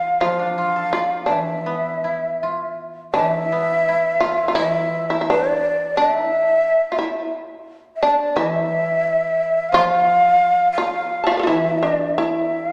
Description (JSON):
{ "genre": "japanese traditional, Japanese chamber music", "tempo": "86 BPM", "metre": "4/4", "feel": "rubato", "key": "E in sen", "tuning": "A4 = 441 Hz", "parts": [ { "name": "breathy shakuhachi", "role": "melody", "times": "0.0-12.7 s", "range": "D5 to F5", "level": "-21 LUFS", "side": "equal", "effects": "none" }, { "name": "shamisen", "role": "second line", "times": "0.0-12.7 s", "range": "D4 to A5", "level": "-24 LUFS", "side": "equal", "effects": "none" }, { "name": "koto", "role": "accompaniment", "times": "0.0-12.7 s", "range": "E3 to D5", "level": "-30 LUFS", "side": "equal", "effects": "none" } ], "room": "wet recital hall reverb, RT60 1.8 s", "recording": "none", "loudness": "-19 LUFS", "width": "mono", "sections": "0.0-3.1 A section; 3.1-12.7 B section", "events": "none", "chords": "none" }